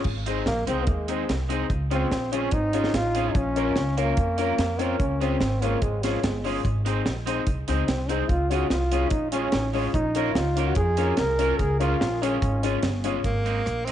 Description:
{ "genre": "ska", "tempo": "146 BPM", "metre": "4/4", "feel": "straight", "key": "Ab major", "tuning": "A4 = 440 Hz", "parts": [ { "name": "deep reggae drum kit", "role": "drums", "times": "0.0-13.9 s", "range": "crash cymbal, hi-hat, kick drum, rim click, snare drum", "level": "-28 LUFS", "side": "right 1 dB", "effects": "none" }, { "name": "upright bass", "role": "bass", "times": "0.1-13.9 s", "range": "G1 to F2", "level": "-27 LUFS", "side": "equal", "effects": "none" }, { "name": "electric guitar at the edge of break-up", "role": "accompaniment", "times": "0.3-13.9 s", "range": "Ab3 to Bb4", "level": "-33 LUFS", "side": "right 10 dB", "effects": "lush chorus" }, { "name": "dark upright piano", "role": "stabs", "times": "0.3-13.2 s", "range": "C4 to Db5", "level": "-30 LUFS", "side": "left 9 dB", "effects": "none" }, { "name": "clear trombone", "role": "melody", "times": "0.5-12.6 s", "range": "F3 to Bb4", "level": "-27 LUFS", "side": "right 1 dB", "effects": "tape echo" }, { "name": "breathy tenor saxophone", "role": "melody", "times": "13.2-13.9 s", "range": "Bb3 to C4", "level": "-27 LUFS", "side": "right 2 dB", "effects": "none" } ], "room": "light reverb, small room ambience", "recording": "1960s-style stereo with parts hard left and right, nothing above 10.3 kHz", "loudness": "-22 LUFS", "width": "side -11 dB against mid", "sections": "0.1-13.2 A section", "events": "trombone solo 0.1-13.2", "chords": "0.1 Ab; 1.7 Db; 3.4 Bbm; 5.0 Db; 6.6 Ab; 8.3 Db; 9.9 Bbm; 11.6 Db; 13.2 Ab" }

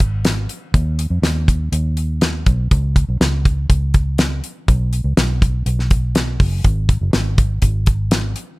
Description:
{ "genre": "piano-driven pop", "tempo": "122 BPM", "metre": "4/4", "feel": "straight", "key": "unclear", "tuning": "A4 = 439 Hz", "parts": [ { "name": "vintage muted fingered electric bass", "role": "bass", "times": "0.0-8.3 s", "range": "F#1 to F2", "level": "-18 LUFS", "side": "equal", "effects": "none" }, { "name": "damped 70s drum kit", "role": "drums", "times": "0.0-8.5 s", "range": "hi-hat, kick drum, snare drum", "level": "-16 LUFS", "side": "equal", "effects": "none" } ], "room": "little or no reverb", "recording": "none", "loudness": "-15 LUFS", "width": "side -22 dB against mid", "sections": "0.0-8.6 A section", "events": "none", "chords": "none" }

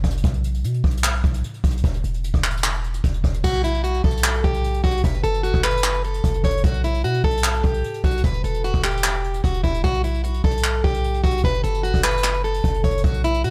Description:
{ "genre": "hip hop, trap", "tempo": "150 BPM", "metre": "4/4", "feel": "half-time", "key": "unclear", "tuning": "A4 = 440 Hz", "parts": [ { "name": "warm 808-style bass", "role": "bass", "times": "0.0-13.5 s", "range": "E1 to B2", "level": "-26 LUFS", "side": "equal", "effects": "none" }, { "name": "jazz brush drum kit", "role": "drums", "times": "0.0-13.5 s", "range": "crash cymbal, handclaps, hi-hat, kick drum", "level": "-24 LUFS", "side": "equal", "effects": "none" }, { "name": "picked plugged-in steel-string acoustic guitar", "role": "melody", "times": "3.4-13.5 s", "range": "E4 to C#5", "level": "-26 LUFS", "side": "equal", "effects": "low-pass filter" } ], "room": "small room ambience", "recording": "none", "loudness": "-21 LUFS", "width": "mono", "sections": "0.0-3.4 A section; 3.4-13.5 B section", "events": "break 0.0-3.4", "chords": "0.0 N.C.; 3.4 Gmaj9/B; 5.0 F#m; 6.6 Gmaj9/B; 8.2 Em; 9.8 Gmaj9/B; 11.4 F#m" }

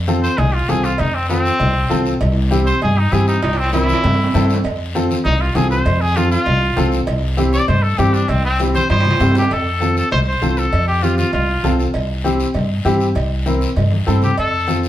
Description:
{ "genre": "latin, cumbia", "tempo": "197 BPM", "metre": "4/4", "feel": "straight", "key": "F major", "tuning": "A4 = 441 Hz", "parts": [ { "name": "upright bass", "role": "bass", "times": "0.0-14.9 s", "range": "C2 to G2", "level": "-18 LUFS", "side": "equal", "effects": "none" }, { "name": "clear upright piano", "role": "accompaniment", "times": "0.1-14.9 s", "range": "C4 to Bb4", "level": "-20 LUFS", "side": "left 1 dB", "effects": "none" }, { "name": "congas", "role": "percussion", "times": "0.1-14.8 s", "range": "none", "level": "-24 LUFS", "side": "left 2 dB", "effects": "none" }, { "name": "guiro", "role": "percussion", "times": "0.1-14.9 s", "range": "none", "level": "-32 LUFS", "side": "left 4 dB", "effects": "none" }, { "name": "bright trumpet", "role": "melody", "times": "0.2-11.8, 14.2-14.8 s", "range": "C4 to D5", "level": "-19 LUFS", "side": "equal", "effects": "none" }, { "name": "cowbell and timbales", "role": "percussion", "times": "0.4-14.5 s", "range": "none", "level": "-24 LUFS", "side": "right 4 dB", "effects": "none" } ], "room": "wet studio reverb, RT60 0.8 s", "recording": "heard from further back in the room", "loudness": "-14 LUFS", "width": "side -12 dB against mid", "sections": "0.0-9.5 A section; 9.5-14.9 B section", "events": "trumpet solo 0.0-9.5; drum fill 3.4-4.6, 8.6-9.5, 13.9-14.4", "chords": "0.0 F; 2.2 C; 4.6 F; 7.1 C; 9.5 F; 11.9 C; 14.4 F" }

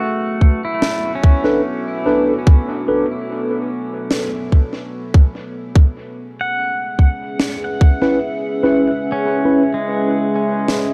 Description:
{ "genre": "ambient dub", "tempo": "73 BPM", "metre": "4/4", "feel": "straight", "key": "B dorian", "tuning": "A4 = 440 Hz", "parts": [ { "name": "deep dark ambient pad", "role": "sustained chords", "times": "0.0-10.9 s", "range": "B3 to D6", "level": "-26 LUFS", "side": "equal", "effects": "chorus, built-in reverb" }, { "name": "pedal steel guitar", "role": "arpeggios", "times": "0.0-10.9 s", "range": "G#3 to F#5", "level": "-25 LUFS", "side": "equal", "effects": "tape echo" }, { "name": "electronic kick drum", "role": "drums", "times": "0.4-8.0 s", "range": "none", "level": "-12 LUFS", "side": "equal", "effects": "none" }, { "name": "snare drum", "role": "drums", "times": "0.8-10.9 s", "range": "none", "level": "-26 LUFS", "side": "equal", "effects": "dub echo" }, { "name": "mellow tine electric piano", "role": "stabs", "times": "1.4-3.0, 8.0-9.6 s", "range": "C#4 to B4", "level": "-22 LUFS", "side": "equal", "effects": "dub echo" } ], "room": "light reverb, digital ambience", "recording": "dark, warm production", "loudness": "-17 LUFS", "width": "mono", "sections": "0.0-10.9 A section", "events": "kick drops out 9.0-10.9", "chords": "0.0 Bm7; 5.8 C#m7" }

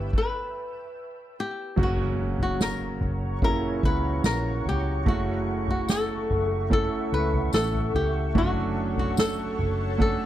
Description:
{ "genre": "pop ballad", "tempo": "73 BPM", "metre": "4/4", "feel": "straight", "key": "unclear", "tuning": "A4 = 441 Hz", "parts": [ { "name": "flamenco guitar", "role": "melody", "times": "0.0-10.3 s", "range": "F#4 to B4", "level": "-29 LUFS", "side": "left 3 dB", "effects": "slapback echo" }, { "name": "warm concert grand piano", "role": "accompaniment", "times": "0.0-10.3 s", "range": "G2 to F#5", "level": "-30 LUFS", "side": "right 4 dB", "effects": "none" }, { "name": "shimmering ambient pad", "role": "sustained chords", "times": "0.0-10.3 s", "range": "A4 to E6", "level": "-36 LUFS", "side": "left 1 dB", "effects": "chorus, built-in reverb" }, { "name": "vintage muted fingered electric bass", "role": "bass", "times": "0.0-10.2 s", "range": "F#1 to C#2", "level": "-29 LUFS", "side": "equal", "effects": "none" }, { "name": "soft-mallet drum kit", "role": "drums", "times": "0.1-10.2 s", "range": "crash cymbal, kick drum, snare drum, toms", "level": "-28 LUFS", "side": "equal", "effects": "none" }, { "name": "impact", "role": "sound effects", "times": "1.8-5.1 s", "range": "none", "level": "-37 LUFS", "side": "equal", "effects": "none" }, { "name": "tambourine", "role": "percussion", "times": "2.6-9.4 s", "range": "none", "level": "-40 LUFS", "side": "left 12 dB", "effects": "none" } ], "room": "little or no reverb", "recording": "dry, close 1970s-style studio recording", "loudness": "-23 LUFS", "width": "side -12 dB against mid", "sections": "0.0-1.8 A section; 1.8-10.3 B section", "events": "impact 1.8-5.1", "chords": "0.0 Em/G; 1.8 F#; 5.1 F#m7; 8.4 Dmaj7/F#" }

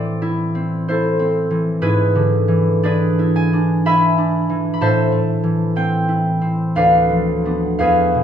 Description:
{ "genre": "classical, solo harp piece", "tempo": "55-64 BPM", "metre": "3/4", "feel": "rubato", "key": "A minor", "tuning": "A4 = 440 Hz", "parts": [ { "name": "concert harp", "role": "solo", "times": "0.0-8.2 s", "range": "D2 to B5", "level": "-15 LUFS", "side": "equal", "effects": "none" } ], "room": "wet recital hall reverb, RT60 1.4 s", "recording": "none", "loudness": "-15 LUFS", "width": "side -9 dB against mid", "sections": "0.0-8.2 A section", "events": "none", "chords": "0.0 Am; 1.8 E7/G#; 4.8 Am; 6.8 Bdim/D" }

